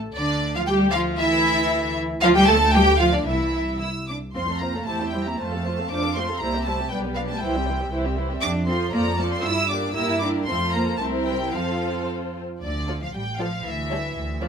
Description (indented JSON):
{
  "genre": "quick classical-period movement for string orchestra",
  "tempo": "116 BPM",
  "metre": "2/4",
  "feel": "rubato",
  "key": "F major",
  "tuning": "A4 = 439 Hz",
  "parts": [
    { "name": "warm studio double bass section", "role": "bass", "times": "0.0-14.5 s", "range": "A1 to G2", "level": "-28 LUFS", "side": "right 1 dB", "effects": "none" },
    { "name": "clear studio violin section", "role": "melody", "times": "0.1-14.4 s", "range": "D5 to E6", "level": "-26 LUFS", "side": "left 1 dB", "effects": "none" },
    { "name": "dark studio violin section", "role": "second line", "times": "0.2-14.5 s", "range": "D4 to F5", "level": "-27 LUFS", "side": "equal", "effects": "none" },
    { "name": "warm chamber viola section", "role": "accompaniment", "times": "0.2-14.5 s", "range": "E3 to A4", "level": "-27 LUFS", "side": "right 2 dB", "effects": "none" },
    { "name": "warm chamber cello section", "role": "bass", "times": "0.2-14.4 s", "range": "D3 to E4", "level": "-27 LUFS", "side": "right 1 dB", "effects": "none" }
  ],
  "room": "light reverb",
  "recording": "minimal, uncompressed stereo recording",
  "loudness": "-20 LUFS",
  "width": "side -7 dB against mid",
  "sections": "0.0-4.3 A section; 4.3-12.6 B section; 12.6-14.5 A section",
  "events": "none",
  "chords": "0.2 Dm; 1.2 Dsus2; 2.2 Dmadd11; 2.7 G5/D; 3.3 C; 4.3 F; 4.9 C/E; 5.4 F; 6.4 C; 6.9 G/B; 7.4 C; 8.4 F; 8.9 Dm/F; 9.4 Gm; 10.5 F; 11.0 C7; 11.5 F; 12.6 Dm; 13.6 A7(no3)/D (rootless)",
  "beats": "| 0.17 0.69 | 1.21 1.72 | 2.23 2.74 | 3.26 3.80 | 4.35 4.86 | 5.39 5.91 | 6.41 6.92 | 7.42 7.92 | 8.42 8.92 | 9.43 9.95 | 10.47 10.99 | 11.53 12.07 | 12.61 13.13 | 13.64 14.16"
}